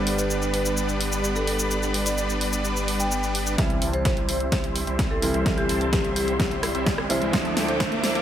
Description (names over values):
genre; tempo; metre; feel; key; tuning
EDM, festival progressive house; 128 BPM; 4/4; straight; C major; A4 = 445 Hz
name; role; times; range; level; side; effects
clear grand piano; accompaniment; 0.0-8.2 s; G2 to G4; -30 LUFS; right 2 dB; sidechain pumping
warm symphonic string section; sustained chords; 0.0-8.2 s; F3 to D6; -34 LUFS; left 1 dB; sidechain pumping, low-pass filter
supersaw chords; riff; 0.0-8.2 s; F3 to A5; -28 LUFS; equal; cassette tape, sidechain pumping, low-pass filter, tape echo
saturated sub bass; bass; 0.0-8.2 s; G1 to D2; -31 LUFS; equal; sidechain pumping
big-room dance drum kit; drums; 0.1-8.2 s; hi-hat, rim click, shaker, snare drum; -29 LUFS; equal; none
marimba with medium mallets; melody; 0.2-8.1 s; G4 to G5; -30 LUFS; equal; tape echo
electronic kick drum; drums; 3.6-7.9 s; none; -26 LUFS; equal; overdrive
riser; sound effects; 5.7-8.2 s; none; -32 LUFS; right 1 dB; none
room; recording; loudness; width
light reverb, digital ambience; high-pass filter; -21 LUFS; side -10 dB against mid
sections
0.0-3.6 A section; 3.6-8.2 B section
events
build-up 3.6-8.2; drum fill 3.6-8.2; filter sweep on supersaw synth 3.6-8.2; filter sweep on string section 3.6-8.2; riser 5.7-8.2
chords
0.0 G; 3.6 C; 7.3 Dmadd9